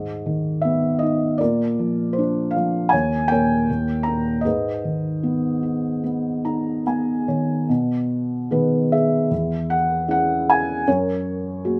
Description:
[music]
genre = classical, lyrical solo piano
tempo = 71-79 BPM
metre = 4/4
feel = rubato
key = G# harmonic minor, B major from 7.7 s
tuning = A4 = 440 Hz
[part]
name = felt-muted upright piano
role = solo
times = 0.0-11.8 s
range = D#2 to A#5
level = -21 LUFS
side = equal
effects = none
[sound]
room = moderate studio reverb, RT60 0.6 s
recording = none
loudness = -21 LUFS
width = mono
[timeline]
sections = 0.0-7.7 A section; 7.7-11.8 B section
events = felt piano fill 6.0-7.7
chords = 0.0 G#m; 1.4 A#; 2.9 D#7sus4; 4.5 G#m; 7.7 B6; 9.3 E6; 10.9 F#add9

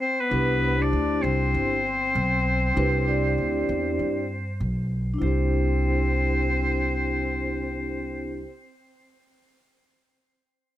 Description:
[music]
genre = hip hop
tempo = 98 BPM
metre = 4/4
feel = swing 65% on 16ths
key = C major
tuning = A4 = 440 Hz
[part]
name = clear oboe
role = melody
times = 0.0-8.4 s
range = B4 to D5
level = -28 LUFS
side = equal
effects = analog delay
[part]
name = warm trombone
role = second line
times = 0.0-8.4 s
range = B3 to D4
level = -32 LUFS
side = left 4 dB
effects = analog delay
[part]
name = vibraphone with soft mallets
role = accompaniment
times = 0.3-8.5 s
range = D4 to D5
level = -27 LUFS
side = equal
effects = none
[part]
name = upright bass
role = bass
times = 0.3-8.4 s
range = G1 to G2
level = -26 LUFS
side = equal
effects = none
[sound]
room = light reverb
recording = none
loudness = -22 LUFS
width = side -13 dB against mid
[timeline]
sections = 0.0-5.2 A section; 5.2-7.7 B section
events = break 0.0-0.3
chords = 0.3 Cmaj7; 5.2 C

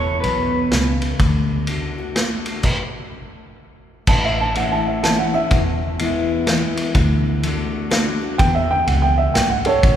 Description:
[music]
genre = honky-tonk and classic country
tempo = 125 BPM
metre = 3/4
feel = swing 62% on 8ths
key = unclear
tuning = A4 = 440 Hz
[part]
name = electric guitar through a small old amp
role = melody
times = 0.0-1.0 s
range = B4 to C#5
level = -25 LUFS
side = left 1 dB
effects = none
[part]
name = picked steel-string acoustic guitar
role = accompaniment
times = 0.0-10.0 s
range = E2 to F#4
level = -24 LUFS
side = left 2 dB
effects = none
[part]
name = vintage muted fingered electric bass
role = bass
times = 0.0-10.0 s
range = E1 to E2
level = -22 LUFS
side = equal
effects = none
[part]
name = vintage drum kit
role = drums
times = 0.2-10.0 s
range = crash cymbal, kick drum, ride cymbal, snare drum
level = -20 LUFS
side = equal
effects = none
[part]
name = dark upright piano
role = second line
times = 4.1-10.0 s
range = A4 to A5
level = -20 LUFS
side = right 3 dB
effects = none
[sound]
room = wet church reverb, RT60 3.0 s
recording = recorded in a church or concert hall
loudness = -16 LUFS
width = side -10 dB against mid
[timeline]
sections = 0.0-4.1 A section; 4.1-10.0 B section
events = stop 2.6-4.1; upright piano solo 4.1-10.0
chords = 0.0 E5; 1.2 D; 2.6 N.C.; 4.1 A; 5.5 E; 7.0 D; 8.4 E

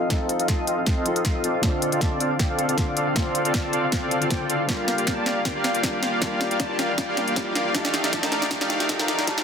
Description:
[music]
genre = future bass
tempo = 157 BPM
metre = 4/4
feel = swing 54% on 16ths, half-time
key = G minor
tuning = A4 = 440 Hz
[part]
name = felt-muted upright piano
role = accompaniment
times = 0.0-9.4 s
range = D3 to A5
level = -31 LUFS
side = left 3 dB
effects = sidechain pumping, tape echo
[part]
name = concert harp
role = arpeggios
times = 0.0-9.4 s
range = F4 to F5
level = -32 LUFS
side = left 3 dB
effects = vintage 12-bit sampler grit, sidechain pumping, low-pass filter, tape echo
[part]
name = soft supersaw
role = riff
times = 0.0-9.4 s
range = A3 to A5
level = -24 LUFS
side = equal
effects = sidechain pumping, low-pass filter, tape echo
[part]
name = riser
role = sound effects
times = 0.8-9.4 s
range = none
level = -38 LUFS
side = right 1 dB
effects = none
[part]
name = electronic kick drum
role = drums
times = 0.1-9.4 s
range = none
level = -26 LUFS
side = equal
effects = none
[part]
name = trap drum kit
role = drums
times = 0.1-9.4 s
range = hi-hat, snare drum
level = -26 LUFS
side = equal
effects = none
[sound]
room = moderate digital room reverb, RT60 1.0 s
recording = dense, heavily limited modern master, high-pass filter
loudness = -21 LUFS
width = side -7 dB against mid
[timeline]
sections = 0.0-9.4 A section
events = build-up 0.0-9.4; drum fill 0.0-9.4; filter sweep on supersaw synth 0.0-9.4; filter sweep 0.0-9.4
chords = 0.0 F7; 1.4 Dm7; 4.7 Gm7; 7.7 Ebmaj9#11

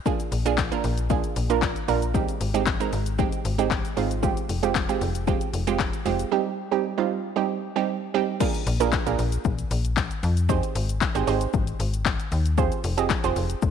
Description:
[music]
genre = dance-pop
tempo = 115 BPM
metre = 4/4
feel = straight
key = unclear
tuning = A4 = 440 Hz
[part]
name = analog pluck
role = accompaniment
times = 0.1-13.7 s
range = G3 to Eb5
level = -25 LUFS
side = right 10 dB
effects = chorus, sidechain pumping
[part]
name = punchy analog drum machine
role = drums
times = 0.1-13.7 s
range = crash cymbal, handclaps, hi-hat, kick drum, shaker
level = -26 LUFS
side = left 5 dB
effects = none
[part]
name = slap-like FM bass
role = bass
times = 0.3-13.7 s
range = F1 to F2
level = -26 LUFS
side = left 1 dB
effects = sidechain pumping
[sound]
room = light reverb, digital ambience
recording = 1960s-style stereo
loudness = -22 LUFS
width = side -8 dB against mid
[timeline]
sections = 0.1-8.4 A section; 8.4-13.7 B section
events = none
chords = 0.1 Bb7; 2.1 Abmaj7; 4.2 Fmadd9; 6.3 Cm; 8.4 Bb7; 10.5 Abmaj7; 12.6 Fmadd9

